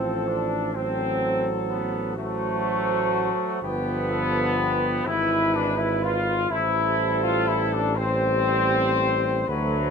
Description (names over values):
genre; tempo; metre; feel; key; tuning
classical, hymn-like piece for brass band; 41 BPM (dotted quarters); 6/8; rubato; unclear; A4 = 440 Hz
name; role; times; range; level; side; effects
mellow cornet; melody; 0.0-9.9 s; F#4 to C5; -30 LUFS; left 9 dB; none
warm French horn section; second line; 0.0-9.9 s; B4 to C5; -30 LUFS; right 10 dB; none
clear euphonium; accompaniment; 0.0-9.9 s; E3 to A3; -31 LUFS; right 4 dB; none
clear trombone section; accompaniment; 0.0-9.9 s; F#3 to F4; -25 LUFS; left 2 dB; none
mellow tuba; bass; 0.0-9.9 s; G1 to D2; -29 LUFS; right 1 dB; none
room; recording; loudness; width
moderate recital hall reverb, RT60 1.6 s; close, detailed microphones; -21 LUFS; side -6 dB against mid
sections
0.0-9.9 A section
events
none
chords
0.0 F/A; 0.7 Am69; 3.6 G7; 5.1 E/G#; 6.5 Am7